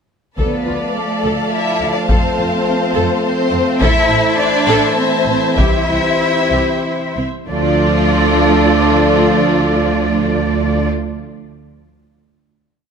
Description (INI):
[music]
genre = cinematic, epic orchestral film score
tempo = 89-105 BPM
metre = 3/4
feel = straight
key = D minor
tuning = A4 = 439 Hz
[part]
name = warm symphonic violin section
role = melody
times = 0.4-10.9 s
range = F4 to E5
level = -22 LUFS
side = left 5 dB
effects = none
[part]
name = warm symphonic violin section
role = second line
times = 0.4-10.9 s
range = D4 to A5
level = -22 LUFS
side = left 1 dB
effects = none
[part]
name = rich symphonic viola section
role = accompaniment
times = 0.4-10.9 s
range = F3 to D5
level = -22 LUFS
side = right 1 dB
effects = none
[part]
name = clear trombone section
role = sustained chords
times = 0.4-10.9 s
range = E3 to D4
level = -22 LUFS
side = right 4 dB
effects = none
[part]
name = warm French horn section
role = sustained chords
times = 0.4-10.8 s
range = D4 to D5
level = -23 LUFS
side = left 6 dB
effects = none
[part]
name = warm woodwind section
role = sustained chords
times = 0.4-10.9 s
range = F3 to D5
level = -25 LUFS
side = left 1 dB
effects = none
[part]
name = rich symphonic cello section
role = bass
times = 0.4-10.9 s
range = A3 to D5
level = -20 LUFS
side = right 1 dB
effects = none
[part]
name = rich symphonic double bass section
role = bass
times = 0.4-10.9 s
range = A1 to F2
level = -20 LUFS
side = right 4 dB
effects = none
[part]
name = taiko ensemble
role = drums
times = 0.4-6.2 s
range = none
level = -17 LUFS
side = left 1 dB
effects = none
[sound]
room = moderate scoring stage reverb, RT60 1.8 s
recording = none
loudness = -12 LUFS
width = side -6 dB against mid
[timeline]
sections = 0.4-7.5 theme; 7.5-11.5 final chord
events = slowing down 3.0-7.5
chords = 0.4 Dm; 2.1 F; 3.8 Am; 5.6 C; 7.5 Dm